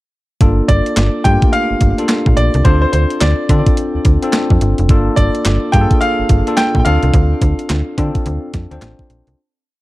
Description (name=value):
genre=R&B, new jack swing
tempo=107 BPM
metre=4/4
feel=swing 62% on 16ths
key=G minor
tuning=A4 = 441 Hz
part: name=bell-like tine electric piano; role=accompaniment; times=0.4-9.4 s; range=A3 to C5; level=-18 LUFS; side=left 1 dB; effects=none
part: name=slap-like FM bass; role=bass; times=0.4-9.4 s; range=F1 to D3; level=-15 LUFS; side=equal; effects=none
part: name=crisp 8-bit digital drum machine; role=drums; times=0.4-9.4 s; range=handclaps, hi-hat, kick drum, snare drum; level=-14 LUFS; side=equal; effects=overdrive
part: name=bright grand piano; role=melody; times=0.7-8.8 s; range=C5 to G5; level=-19 LUFS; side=equal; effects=digital delay
room=digital ambience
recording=dark, warm production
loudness=-11 LUFS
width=side -18 dB against mid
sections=0.4-9.4 verse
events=fade-out 7.1-9.4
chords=0.4 Gm9; 2.6 Dm7; 4.9 Gm9; 6.9 Dm7